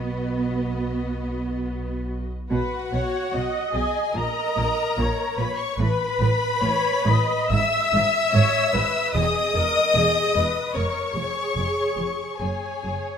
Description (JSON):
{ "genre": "classical, slow romantic movement for string orchestra", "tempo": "73 BPM", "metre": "4/4", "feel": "uneven beats, rubato", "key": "B major", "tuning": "A4 = 441 Hz", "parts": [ { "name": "warm symphonic violin section", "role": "melody", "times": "0.0-13.2 s", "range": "D#5 to E6", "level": "-27 LUFS", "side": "left 4 dB", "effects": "none" }, { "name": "warm symphonic violin section", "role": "second line", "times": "0.0-13.2 s", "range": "F#4 to E5", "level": "-27 LUFS", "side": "left 3 dB", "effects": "none" }, { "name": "warm symphonic viola section", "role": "accompaniment", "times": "0.0-13.2 s", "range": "F#4 to E5", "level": "-27 LUFS", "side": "equal", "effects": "none" }, { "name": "warm symphonic cello section", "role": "bass", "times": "0.0-12.9 s", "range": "E2 to B3", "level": "-30 LUFS", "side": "right 2 dB", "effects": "none" }, { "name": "warm symphonic double bass section", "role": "bass", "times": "0.0-12.9 s", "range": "E1 to B1", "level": "-26 LUFS", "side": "right 2 dB", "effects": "none" } ], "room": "moderate scoring stage reverb, RT60 1.7 s", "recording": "close, detailed microphones", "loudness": "-20 LUFS", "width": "side -7 dB against mid", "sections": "0.0-2.5 A section; 2.5-13.2 B section", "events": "none", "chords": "0.0 B; 4.2 A#madd11; 5.8 Aadd9; 7.5 E/G#; 9.1 Emaj7#11; 10.8 C#/E#; 12.4 F#5" }